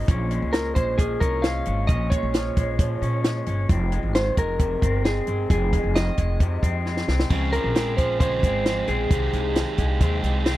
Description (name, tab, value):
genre	jangly indie pop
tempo	133 BPM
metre	4/4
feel	straight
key	unclear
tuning	A4 = 437 Hz
part	electric guitar through a small old amp	arpeggios	0.0-10.6 s	F2 to Db4	-30 LUFS	left 3 dB	spring reverb
part	upright bass	bass	0.0-10.6 s	F1 to Bb2	-25 LUFS	equal	none
part	compact cocktail drum kit	drums	0.1-10.6 s	crash cymbal, hi-hat, kick drum, snare drum	-22 LUFS	equal	none
part	lightly driven lead guitar	melody	0.5-10.6 s	Ab4 to F5	-27 LUFS	right 1 dB	none
part	crunchy overdriven guitar	accompaniment	7.3-10.6 s	C3 to Ab4	-28 LUFS	right 6 dB	none
room	little or no reverb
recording	dry, close 1970s-style studio recording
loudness	-20 LUFS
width	side -15 dB against mid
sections	0.0-7.3 A section; 7.3-10.6 B section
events	drum fill 6.9-7.3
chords	0.1 Bbm7; 3.7 Fm7; 7.3 Dbmaj7; 9.1 Abmaj7/C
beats	| 0.08 0.53 0.98 1.44 | 1.89 2.34 2.79 3.25 | 3.70 4.15 4.60 5.05 | 5.50 5.95 6.41 6.86 | 7.31 7.76 8.21 8.66 | 9.11 9.56 10.01 10.46